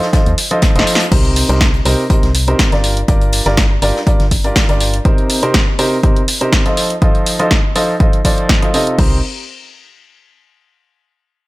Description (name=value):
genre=piano house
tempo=122 BPM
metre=4/4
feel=swing 53% on 16ths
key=C dorian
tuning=A4 = 440 Hz
part: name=clear grand piano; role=riff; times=0.0-9.2 s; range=C3 to Eb5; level=-17 LUFS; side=equal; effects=vintage 12-bit sampler grit, sidechain pumping, low-pass filter, digital delay
part: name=vintage drum kit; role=drums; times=0.0-4.9 s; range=hi-hat, snare drum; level=-28 LUFS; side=left 2 dB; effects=sidechain pumping on hats, high-pass filter on hats, high-pass filter on snare, high-pass filter on room
part: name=electronic kick drum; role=drums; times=0.1-9.1 s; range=none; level=-13 LUFS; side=equal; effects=none
part: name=punchy analog drum machine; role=drums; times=0.1-9.1 s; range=crash cymbal, hi-hat, snare drum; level=-18 LUFS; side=equal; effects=none
part: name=organ-like FM bass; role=bass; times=0.3-5.0, 9.0-9.2 s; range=F1 to Eb2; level=-16 LUFS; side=equal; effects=sidechain pumping
room=small room ambience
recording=none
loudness=-11 LUFS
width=side -20 dB against mid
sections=0.0-1.1 A section; 1.1-9.0 B section; 9.0-11.0 C section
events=drop 0.0-1.1; drum fill 0.6-1.1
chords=0.0 F7; 1.1 Cm7; 2.8 Gm7; 5.1 Cm7; 6.8 F7; 9.0 Cm7